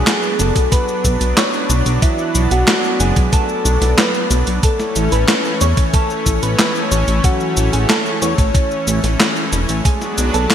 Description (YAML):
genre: synthwave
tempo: 92 BPM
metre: 4/4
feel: straight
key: B dorian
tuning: A4 = 440 Hz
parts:
  - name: soft octave-layered synth lead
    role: melody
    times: 0.0-10.5 s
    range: E4 to C#5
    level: -22 LUFS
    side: left 1 dB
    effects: chorus, phaser, ping-pong delay
  - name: soft synth bell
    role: second line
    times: 0.0-10.5 s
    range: E5 to C#6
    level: -26 LUFS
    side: right 3 dB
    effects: chorus, phaser, ping-pong delay
  - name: lush unison pad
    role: sustained chords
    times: 0.0-10.5 s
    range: E3 to D4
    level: -22 LUFS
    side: equal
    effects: chorus, sidechain pumping
  - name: chorused synth bass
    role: bass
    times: 0.0-10.5 s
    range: E1 to E2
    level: -17 LUFS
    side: equal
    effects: sidechain pumping
  - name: clean 12-bit digital drum machine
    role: drums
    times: 0.1-10.5 s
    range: cabasa, handclaps, hi-hat, snare drum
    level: -18 LUFS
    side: equal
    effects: studio reverb, gated reverb
  - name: electronic kick drum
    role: drums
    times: 0.6-10.0 s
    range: none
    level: -15 LUFS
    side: equal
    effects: studio reverb
room: moderate lush hall reverb, RT60 2.8 s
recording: bright 1980s-style digital production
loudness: -13 LUFS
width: side -9 dB against mid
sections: 0.0-10.5 A section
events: none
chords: 0.0 Bm; 4.6 A; 9.9 Bm